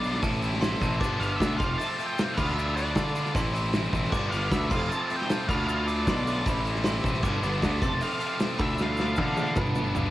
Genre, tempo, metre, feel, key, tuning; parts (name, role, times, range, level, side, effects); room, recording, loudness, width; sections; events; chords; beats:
indie rock; 154 BPM; 4/4; straight; G mixolydian; A4 = 440 Hz
octave-fuzz lead guitar; melody; 0.0-9.6 s; D5 to A5; -34 LUFS; left 1 dB; distortion, cassette tape, analog delay
glockenspiel with brass mallets; second line; 0.0-10.1 s; A5 to D6; -35 LUFS; right 3 dB; cassette tape
heavy high-gain guitar; riff; 0.0-10.1 s; F2 to F4; -31 LUFS; left 1 dB; distortion, cassette tape
fuzz picked electric bass; bass; 0.0-10.1 s; F1 to D3; -29 LUFS; equal; overdrive
loose indie drum kit; drums; 0.0-10.0 s; crash cymbal, hi-hat, kick drum, snare drum, toms; -29 LUFS; equal; cassette tape
egg shaker; percussion; 0.0-10.0 s; -53 LUFS; left 4 dB
percussive tonewheel organ; sustained chords; 4.1-10.1 s; D3 to C5; -39 LUFS; equal
light reverb, small room reverb; home recording on cassette; -24 LUFS; side -15 dB against mid
0.0-10.1 A section
drum fill 8.8-10.1
0.2 Am; 1.0 G; 1.6 F; 2.4 Dm; 3.3 Am; 4.1 G; 4.7 F; 5.5 Dm; 6.5 Am7; 7.2 G; 7.8 F; 8.6 Dm; 9.6 G
0.22 0.61 | 1.00 1.39 1.78 2.17 | 2.56 2.95 3.34 3.73 | 4.12 4.51 4.90 5.29 | 5.68 6.07 6.46 6.85 | 7.24 7.63 8.02 8.40 | 8.79 9.18 9.57 9.96